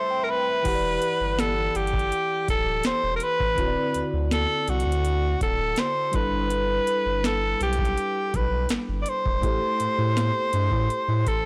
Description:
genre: contemporary R&B.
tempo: 82 BPM.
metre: 4/4.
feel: straight.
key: E minor.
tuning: A4 = 439 Hz.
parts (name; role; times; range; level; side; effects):
bright alto saxophone; melody; 0.0-11.5 s; F#4 to D5; -27 LUFS; equal; delay.
mellow tine electric piano; accompaniment; 0.0-11.5 s; D3 to B5; -34 LUFS; equal; analog chorus.
saturated sub bass; bass; 0.7-11.4 s; D1 to A2; -30 LUFS; equal; none.
booming analog drum machine; drums; 0.7-11.5 s; crash cymbal, hi-hat, kick drum, snare drum; -31 LUFS; equal; overdrive.
room: light reverb.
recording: blown-out, overdriven recording, overdrive.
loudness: -24 LUFS.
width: mono.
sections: 0.7-11.5 A section.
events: break 0.0-0.7; tine electric piano fill 0.0-0.7.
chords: 0.0 Am7; 0.7 Em7; 3.6 D7; 6.1 G6; 9.4 Am7.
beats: | 0.65 1.38 2.12 2.85 | 3.58 4.31 5.04 5.77 | 6.51 7.24 7.97 8.70 | 9.43 10.16 10.90.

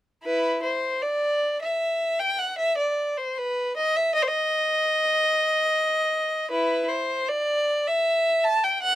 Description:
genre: classical, baroque-style suite movement for unaccompanied violin.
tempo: 77 BPM.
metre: 4/4.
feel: rubato.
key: unclear.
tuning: A4 = 441 Hz.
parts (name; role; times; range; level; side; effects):
warm violin; solo; 0.2-9.0 s; E4 to A5; -22 LUFS; equal; none.
room: little or no reverb.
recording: close, detailed microphones.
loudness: -22 LUFS.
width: side -14 dB against mid.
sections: 0.2-9.0 A section.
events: none.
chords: none.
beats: | 0.24 1.04 1.81 2.58 | 3.36 4.14 4.92 5.70 | 6.49 7.27 8.04 8.81.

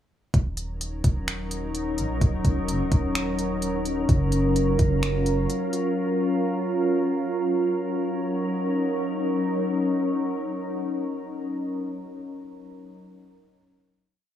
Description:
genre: hip hop, atmospheric cloud-rap.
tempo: 128 BPM.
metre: 4/4.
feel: half-time.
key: Eb minor.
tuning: A4 = 440 Hz.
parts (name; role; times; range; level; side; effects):
glassy FM pad; sustained chords; 0.9-11.4 s; Gb3 to Bb4; -25 LUFS; equal; ensemble chorus, built-in reverb, sidechain pumping.
long sustained 808-style bass; bass; 0.3-5.5 s; Eb1 to Bb1; -27 LUFS; equal; none.
smooth R&B drum kit; drums; 0.3-5.8 s; finger snaps, hi-hat, kick drum; -24 LUFS; equal; none.
room: light reverb.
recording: small room ambience.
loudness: -23 LUFS.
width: side -10 dB against mid.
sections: 0.3-7.8 verse; 7.8-11.6 final chord.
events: none.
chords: 0.3 Ebm7; 4.1 Gbmaj7; 7.8 Ebm7.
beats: | 0.34 0.81 1.28 1.75 | 2.21 2.68 3.15 3.62 | 4.09 4.56 5.03 5.50 | 5.96 6.43 6.90 7.37 | 7.84 8.31 8.78 9.24 | 9.71 10.18 10.65 11.12.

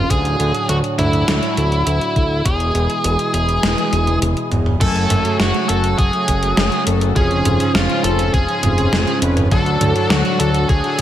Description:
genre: synthwave.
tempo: 102 BPM.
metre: 4/4.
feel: straight.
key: F# minor.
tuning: A4 = 438 Hz.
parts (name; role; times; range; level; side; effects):
smooth overdriven lead guitar; melody; 0.0-11.0 s; E4 to A4; -20 LUFS; equal; ping-pong delay.
warm analog pad; sustained chords; 0.0-11.0 s; G#2 to G#5; -22 LUFS; right 1 dB; chorus, sidechain pumping.
fat analog bass; bass; 0.0-11.0 s; E1 to D2; -19 LUFS; equal; sidechain pumping.
electronic kick drum; drums; 0.1-11.0 s; none; -17 LUFS; equal; none.
gated 80s digital drum machine; drums; 0.1-11.0 s; crash cymbal, hi-hat, snare drum, toms; -20 LUFS; equal; gated reverb, gated reverb snare.
analog synth brass; stabs; 4.8-11.0 s; E#3 to G#5; -23 LUFS; left 3 dB; chorus.
room: light reverb.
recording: none.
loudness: -14 LUFS.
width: side -11 dB against mid.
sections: 0.0-4.8 A section; 4.8-11.0 B section.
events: drum fill 3.6-4.8.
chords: 0.1 D; 2.5 E; 4.8 F#madd9; 7.2 C#/E#; 9.5 D.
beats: | 0.10 0.69 1.28 1.87 | 2.46 3.04 3.63 4.22 | 4.81 5.40 5.99 6.57 | 7.16 7.75 8.34 8.93 | 9.52 10.10 10.69.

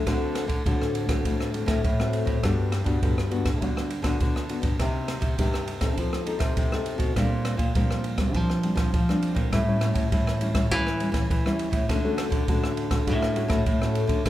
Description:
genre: samba and choro.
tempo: 102 BPM.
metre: 4/4.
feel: straight.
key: unclear.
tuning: A4 = 440 Hz.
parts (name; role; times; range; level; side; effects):
nylon-string guitar; accompaniment; 0.0-14.3 s; G2 to A4; -28 LUFS; left 2 dB; none.
nylon-string guitar; bass; 0.0-14.3 s; G2 to F3; -28 LUFS; right 1 dB; none.
open jazz drum kit; drums; 0.1-14.3 s; kick drum, ride cymbal, rim click; -26 LUFS; equal; none.
room: wet recital hall reverb, RT60 1.5 s.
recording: recorded in a church or concert hall.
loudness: -22 LUFS.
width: side -14 dB against mid.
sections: 0.0-14.3 A section.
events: none.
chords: 0.1 D7; 2.4 Gmaj7; 4.8 Cm7; 6.0 F7; 7.2 Bb69; 9.5 A7; 11.9 Dmaj7.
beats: | 0.07 0.66 1.25 1.84 | 2.43 3.02 3.61 4.21 | 4.80 5.39 5.98 6.57 | 7.16 7.75 8.34 8.93 | 9.52 10.12 10.71 11.30 | 11.89 12.48 13.07 13.66 | 14.25.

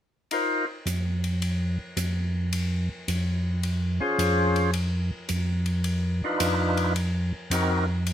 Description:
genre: soul jazz organ trio.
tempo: 108 BPM.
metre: 4/4.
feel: swing 68% on 8ths.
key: unclear.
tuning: A4 = 445 Hz.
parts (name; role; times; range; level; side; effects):
percussive tonewheel organ; melody; 0.3-0.7, 4.0-7.9 s; C4 to C5; -24 LUFS; left 1 dB; slow rotary speaker.
swinging big-band drum kit; drums; 0.3-8.1 s; hi-hat, ride cymbal; -34 LUFS; left 1 dB; none.
mellow tonewheel organ; bass; 0.9-8.1 s; F2; -25 LUFS; equal; slow rotary speaker.
room: light reverb.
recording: minimal, uncompressed stereo recording.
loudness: -24 LUFS.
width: side -10 dB against mid.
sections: 0.3-8.1 A section.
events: none.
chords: 0.3 F7sus4.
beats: | 0.31 0.87 1.42 1.97 | 2.53 3.08 3.64 4.19 | 4.74 5.30 5.85 6.40 | 6.96 7.51 8.06.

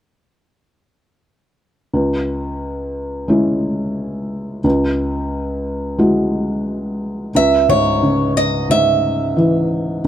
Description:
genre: acoustic folk-pop ballad.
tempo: 89 BPM.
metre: 4/4.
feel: straight.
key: C# minor.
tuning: A4 = 441 Hz.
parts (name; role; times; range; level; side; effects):
felt-muted upright piano; accompaniment; 1.9-10.1 s; C#2 to F#4; -17 LUFS; equal; none.
picked acoustic archtop guitar; melody; 7.4-9.7 s; C#5 to E5; -16 LUFS; right 3 dB; none.
room: light reverb.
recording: dark, warm production.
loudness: -15 LUFS.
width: side -10 dB against mid.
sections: 1.9-7.3 A section; 7.3-10.1 B section.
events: none.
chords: 1.9 C#m; 4.6 Eadd9/C#; 7.3 C#m.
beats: | 1.95 2.62 3.30 3.97 | 4.65 5.32 5.99 6.66 | 7.34 8.02 8.69 9.37 | 10.04.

